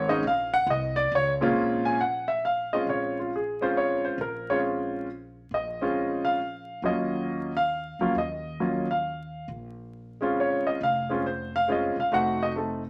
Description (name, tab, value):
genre	jazz piano trio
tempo	136 BPM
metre	3/4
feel	swing 65% on 8ths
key	Bb minor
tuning	A4 = 440 Hz
part	warm concert grand piano	melody	0.0-12.8 s	Bb2 to Ab5	-27 LUFS	equal	none
part	upright bass	bass	0.0-12.9 s	E1 to Eb2	-40 LUFS	equal	none
room	wet studio reverb, RT60 0.8 s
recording	vinyl crackle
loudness	-27 LUFS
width	mono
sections	0.0-1.6 A section; 1.6-12.9 B section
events	grand piano solo 0.0-1.6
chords	0.0 Bbm9; 6.8 Ebm9; 9.5 Bbm9; 12.1 F7b9